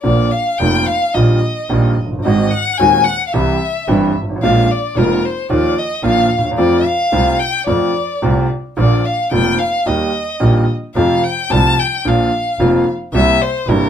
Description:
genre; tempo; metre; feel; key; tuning
tango; 110 BPM; 4/4; rubato; Bb major; A4 = 439 Hz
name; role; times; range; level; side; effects
warm violin; second line; 0.0-13.9 s; Bb4 to A5; -17 LUFS; left 3 dB; none
warm baby grand piano; accompaniment; 0.0-13.9 s; Eb1 to G4; -16 LUFS; right 1 dB; none
clear double bass; bass; 0.0-13.9 s; F1 to F2; -18 LUFS; right 1 dB; none
room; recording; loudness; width
wet studio reverb, RT60 0.5 s; band playing live in one room; -13 LUFS; side -9 dB against mid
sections
0.1-13.9 A section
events
violin solo 0.1-13.9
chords
0.1 Bb; 1.2 Ebadd9/Bb; 2.2 Ab7; 3.3 C; 4.4 Bb7; 5.5 Ebsus2; 6.6 F6; 8.8 Bb; 9.9 Eb; 11.0 F; 12.0 Bb; 13.1 C7

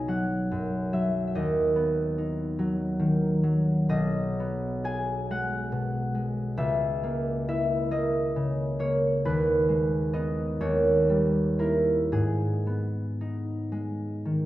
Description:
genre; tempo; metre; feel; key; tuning
classical, solo harp piece; 34-49 BPM (dotted quarters); 6/8; rubato; B major, G# minor from 3.9 s; A4 = 440 Hz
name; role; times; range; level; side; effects
concert harp; solo; 0.0-14.5 s; B1 to G#5; -24 LUFS; equal; none
room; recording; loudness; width
wet recital hall reverb, RT60 1.6 s; heard from further back in the room; -24 LUFS; side -15 dB against mid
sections
0.0-14.5 A section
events
none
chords
0.0 B; 1.3 B/D#; 3.9 G#m/B; 6.6 A#dim/C#; 9.2 G#m/D#; 10.6 D#7b9; 12.1 G#m

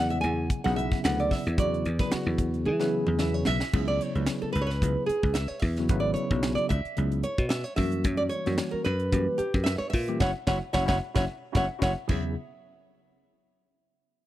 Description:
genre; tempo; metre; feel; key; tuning
electric jazz fusion; 111 BPM; 4/4; swing 54% on 16ths; unclear; A4 = 440 Hz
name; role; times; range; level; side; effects
nylon-string guitar; melody; 0.0-12.4 s; F#4 to G#5; -30 LUFS; right 1 dB; none
tine electric piano; accompaniment; 0.0-12.3 s; C#3 to B4; -32 LUFS; equal; fast stereo tremolo
dry thumbed slap bass; bass; 0.0-12.3 s; F#1 to E3; -28 LUFS; equal; none
crisp fusion drum kit; drums; 0.1-12.2 s; crash cymbal, hi-hat, kick drum, snare drum, toms; -29 LUFS; equal; none
room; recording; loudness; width
studio reverb; dry, close 1970s-style studio recording; -24 LUFS; side -14 dB against mid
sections
0.0-3.7 A section; 3.7-12.4 B section; 12.4-14.3 C section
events
drum fill 2.7-3.7, 11.3-12.4; band accent 10.2-12.4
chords
0.0 Eadd9; 3.7 C#m7; 7.8 F#7b9; 12.1 Eadd9; 12.4 N.C.

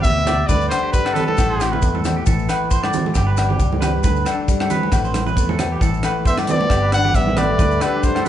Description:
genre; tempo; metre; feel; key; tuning
highlife guitar band; 135 BPM; 4/4; swing 54% on 16ths; unclear; A4 = 440 Hz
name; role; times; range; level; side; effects
bright trumpet; melody; 0.0-1.9, 6.3-8.3 s; A4 to F#5; -21 LUFS; equal; none
picked steel-string acoustic guitar; accompaniment; 0.0-8.3 s; G2 to B4; -25 LUFS; left 4 dB; none
clean electric guitar; arpeggios; 0.0-8.3 s; G4 to D5; -26 LUFS; right 5 dB; none
tight funk drum kit; drums; 0.0-8.3 s; hi-hat, kick drum, rim click; -21 LUFS; equal; none
maracas; percussion; 0.0-8.3 s; none; -36 LUFS; left 6 dB; none
fingered electric bass; bass; 0.1-7.8 s; G1 to E2; -22 LUFS; equal; none
agogo bells; percussion; 0.3-8.3 s; none; -26 LUFS; left 6 dB; none
congas; percussion; 0.3-8.3 s; none; -25 LUFS; right 5 dB; none
breathy trombone; second line; 6.3-8.3 s; G3 to D4; -25 LUFS; left 1 dB; none
room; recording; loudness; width
moderate large studio reverb, RT60 1.4 s; band playing live in one room, nothing above 10.8 kHz; -16 LUFS; side -11 dB against mid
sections
0.0-8.3 A section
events
none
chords
0.5 Dsus4; 1.4 Asus2; 3.2 G; 4.0 Dsus4; 4.9 Asus2; 6.7 Gadd9; 7.6 Dsus4

